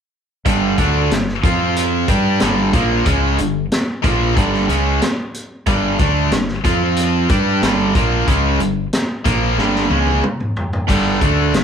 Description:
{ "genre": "classic rock", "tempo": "92 BPM", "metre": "4/4", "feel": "straight", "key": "unclear", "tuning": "A4 = 438 Hz", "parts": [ { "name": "crunchy overdriven guitar", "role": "riff", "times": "0.5-11.6 s", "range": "G2 to G4", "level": "-19 LUFS", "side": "right 8 dB", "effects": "none" }, { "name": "tight distorted guitar", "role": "riff", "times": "0.5-11.6 s", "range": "G2 to G4", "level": "-20 LUFS", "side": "left 9 dB", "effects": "distortion" }, { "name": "growling fingered electric bass", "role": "bass", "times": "0.5-11.6 s", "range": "G1 to G2", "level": "-20 LUFS", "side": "equal", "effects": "overdrive" }, { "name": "vintage drum kit", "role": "drums", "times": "0.5-11.6 s", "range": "crash cymbal, hi-hat, kick drum, snare drum, toms", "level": "-20 LUFS", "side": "equal", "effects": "none" } ], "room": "light reverb", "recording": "band playing live in one room", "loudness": "-14 LUFS", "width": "side -7 dB against mid", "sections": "0.5-11.6 A section", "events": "drum fill 9.6-10.9", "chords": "0.5 G5; 1.4 F5; 2.1 G5; 6.6 F5; 7.3 G5" }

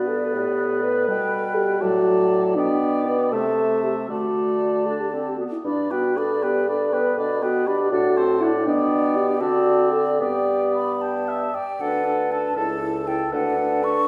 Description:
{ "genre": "quick classical-period movement for wind quintet", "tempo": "79 BPM (dotted quarters)", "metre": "6/8", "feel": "rubato", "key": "G major", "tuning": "A4 = 440 Hz", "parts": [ { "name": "mellow hollow silver concert flute", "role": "melody", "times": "0.0-14.1 s", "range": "D5 to C#6", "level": "-32 LUFS", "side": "equal", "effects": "none" }, { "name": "mellow oboe", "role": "second line", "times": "0.0-14.1 s", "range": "A4 to G5", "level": "-30 LUFS", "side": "equal", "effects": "none" }, { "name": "clear clarinet", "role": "accompaniment", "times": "0.0-14.1 s", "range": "F#3 to B4", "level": "-32 LUFS", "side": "equal", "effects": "none" }, { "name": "dark French horn", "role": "accompaniment", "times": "0.0-14.1 s", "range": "D4 to B4", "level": "-25 LUFS", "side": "equal", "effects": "none" }, { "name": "mellow bassoon", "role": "bass", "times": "0.0-14.0 s", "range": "C#2 to D3", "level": "-28 LUFS", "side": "equal", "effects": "none" } ], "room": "wet recital hall reverb, RT60 1.3 s", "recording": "heard from further back in the room", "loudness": "-22 LUFS", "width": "mono", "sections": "0.0-11.8 A section; 11.8-14.1 B section", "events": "none", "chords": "0.0 G; 1.1 G/B; 1.8 D/A; 2.6 G/B; 3.3 Am/C; 4.1 D; 5.7 G; 7.2 G/B; 7.9 D7/A; 8.7 G/B; 9.4 D7; 10.2 G; 11.8 D; 12.6 A/C#; 13.3 D" }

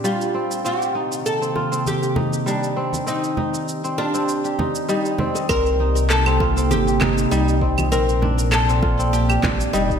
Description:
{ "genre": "organic downtempo", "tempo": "99 BPM", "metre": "4/4", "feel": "swing 54% on 16ths", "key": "C dorian", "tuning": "A4 = 440 Hz", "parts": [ { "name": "oud", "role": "melody", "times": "0.0-10.0 s", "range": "D4 to Bb4", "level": "-24 LUFS", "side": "left 1 dB", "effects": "ping-pong delay" }, { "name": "warbly tape-like pad", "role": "sustained chords", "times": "0.0-10.0 s", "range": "Bb2 to D5", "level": "-25 LUFS", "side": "right 1 dB", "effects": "chorus, built-in reverb, vintage 12-bit sampler grit, sidechain pumping" }, { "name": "kora", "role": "arpeggios", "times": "0.0-10.0 s", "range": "G3 to G4", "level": "-24 LUFS", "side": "equal", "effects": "ping-pong delay" }, { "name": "electronic shaker, claves and handclaps", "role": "drums", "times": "0.0-10.0 s", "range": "none", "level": "-28 LUFS", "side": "right 2 dB", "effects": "none" }, { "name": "congas and bongos", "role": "percussion", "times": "1.6-9.6 s", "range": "none", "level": "-27 LUFS", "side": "right 2 dB", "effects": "none" }, { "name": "warm sub bass", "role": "bass", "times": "5.5-10.0 s", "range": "F1 to C2", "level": "-21 LUFS", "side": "equal", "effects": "tube saturation, sidechain pumping" }, { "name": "electronic kick drum", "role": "drums", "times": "5.5-10.0 s", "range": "none", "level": "-25 LUFS", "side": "equal", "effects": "overdrive" } ], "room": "moderate lush hall reverb, RT60 2.2 s", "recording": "dreamy mix soaked in reverb", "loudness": "-18 LUFS", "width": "side -7 dB against mid", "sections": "0.0-5.5 A section; 5.5-10.0 B section", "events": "none", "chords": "0.0 Bbmaj7; 0.6 Cm7; 3.1 Ebmaj7; 5.5 Cm7; 7.9 Bbmaj7" }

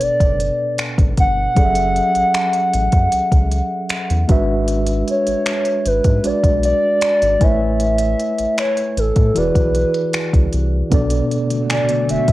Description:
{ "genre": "contemporary R&B", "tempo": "77 BPM", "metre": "4/4", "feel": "straight", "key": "B dorian", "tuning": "A4 = 437 Hz", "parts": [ { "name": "hollow clarinet-like synth lead", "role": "melody", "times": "0.0-12.3 s", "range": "A4 to F#5", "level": "-18 LUFS", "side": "equal", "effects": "chorus, cassette tape, tape echo" }, { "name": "mellow tine electric piano", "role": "accompaniment", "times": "0.0-12.3 s", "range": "B2 to G#5", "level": "-22 LUFS", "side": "right 1 dB", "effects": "medium stereo tremolo, cassette tape" }, { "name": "round analog bass", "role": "bass", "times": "0.0-12.3 s", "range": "E1 to A2", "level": "-20 LUFS", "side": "equal", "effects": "none" }, { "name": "smooth R&B drum kit", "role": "drums", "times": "0.0-12.3 s", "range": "finger snaps, hi-hat, kick drum", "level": "-18 LUFS", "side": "equal", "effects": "cassette tape" }, { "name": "granular cloud pad", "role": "sustained chords", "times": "11.3-12.3 s", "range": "D3 to F#4", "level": "-24 LUFS", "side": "left 1 dB", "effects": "built-in reverb, cassette tape" }, { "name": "glassy synth bell", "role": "texture", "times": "11.7-12.3 s", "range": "G#5", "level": "-32 LUFS", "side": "left 2 dB", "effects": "chorus, tremolo, cassette tape, tape echo" } ], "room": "light reverb", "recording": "home recording on cassette", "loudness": "-14 LUFS", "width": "side -16 dB against mid", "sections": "0.0-10.9 A section; 10.9-12.3 B section", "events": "none", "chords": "0.0 Bm7; 1.6 F#m9; 4.3 E7/G#; 7.4 Amaj9; 9.4 E9; 10.9 Bm7" }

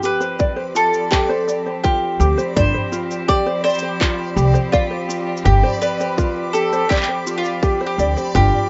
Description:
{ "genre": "folktronica", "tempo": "83 BPM", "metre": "4/4", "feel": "straight", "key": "G mixolydian", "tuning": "A4 = 441 Hz", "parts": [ { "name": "rich string quartet", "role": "sustained chords", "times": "0.0-8.7 s", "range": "F3 to G4", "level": "-31 LUFS", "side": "equal", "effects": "none" }, { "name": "ukulele", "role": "arpeggios", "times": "0.0-8.7 s", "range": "F4 to D5", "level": "-24 LUFS", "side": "equal", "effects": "digital delay" }, { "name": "electronic cabasa and handclaps", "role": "drums", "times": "0.0-8.5 s", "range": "none", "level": "-28 LUFS", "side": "equal", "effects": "overdrive" }, { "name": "backwards swelling texture", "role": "texture", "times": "0.7-8.7 s", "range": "D5 to B5", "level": "-32 LUFS", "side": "equal", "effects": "built-in reverb" }, { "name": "mandolin", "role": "melody", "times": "0.1-8.7 s", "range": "F4 to D5", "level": "-24 LUFS", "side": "equal", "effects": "digital delay" }, { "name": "electronic kick drum", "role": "drums", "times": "0.4-8.5 s", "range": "none", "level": "-22 LUFS", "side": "equal", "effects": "overdrive" }, { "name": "upright bass", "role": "bass", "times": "2.2-8.5 s", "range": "G1 to D2", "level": "-19 LUFS", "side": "equal", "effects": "none" } ], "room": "light reverb", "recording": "rough home demo mix, nothing above 7.8 kHz", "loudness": "-18 LUFS", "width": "mono", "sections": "0.0-8.7 A section", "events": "none", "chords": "0.0 G7sus4" }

